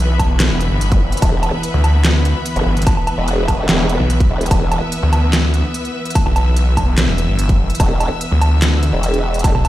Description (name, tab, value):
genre	heavy wobble dubstep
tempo	146 BPM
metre	4/4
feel	half-time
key	unclear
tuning	A4 = 440 Hz
part	clear symphonic string section	sustained chords	0.0-9.7 s	E3 to E6	-23 LUFS	left 1 dB	sidechain pumping
part	snarling distorted saw bass	bass	0.0-9.7 s	E1 to D2	-14 LUFS	equal	distortion, overdrive
part	dubstep drum kit	drums	0.2-9.7 s	handclaps, hi-hat, snare drum, woodblock	-20 LUFS	right 1 dB	none
part	electronic kick drum	drums	0.2-9.5 s	none	-16 LUFS	equal	none
part	zap	sound effects	0.9-1.0 s	none	-30 LUFS	left 1 dB	none
part	formant-sweep wobble bass	bass	1.2-4.8, 7.8-9.5 s	E1 to F#1	-18 LUFS	equal	chorus, overdrive
room	little or no reverb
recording	played on a big sound system in a bare room, large studio reverb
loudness	-13 LUFS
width	side -15 dB against mid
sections	0.0-9.7 A section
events	none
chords	0.0 E5